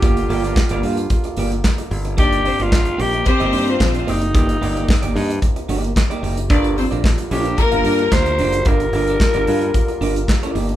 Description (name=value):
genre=disco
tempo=111 BPM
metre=4/4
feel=straight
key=G minor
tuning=A4 = 440 Hz
part: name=growling alto saxophone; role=melody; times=0.0-10.3 s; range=Eb4 to C5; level=-21 LUFS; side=left 2 dB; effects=none
part: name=electric guitar at the edge of break-up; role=accompaniment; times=0.0-10.7 s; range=Bb3 to F5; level=-24 LUFS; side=right 3 dB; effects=none
part: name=mellow French horn section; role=sustained chords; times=0.0-10.8 s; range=C3 to F4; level=-29 LUFS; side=right 3 dB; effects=none
part: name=modern bright fingered electric bass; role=bass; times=0.0-10.8 s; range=F#1 to G2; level=-23 LUFS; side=equal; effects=none
part: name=modern studio drum kit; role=drums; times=0.0-10.8 s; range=handclaps, hi-hat, kick drum, snare drum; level=-19 LUFS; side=equal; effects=none
part: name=rich studio string section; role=second line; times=2.2-8.3 s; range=Bb3 to D5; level=-22 LUFS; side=left 2 dB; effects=none
room=light reverb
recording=band playing live in one room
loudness=-15 LUFS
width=side -12 dB against mid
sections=0.0-10.8 A section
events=none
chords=0.0 Gm7; 1.9 Cm9; 6.5 Gm7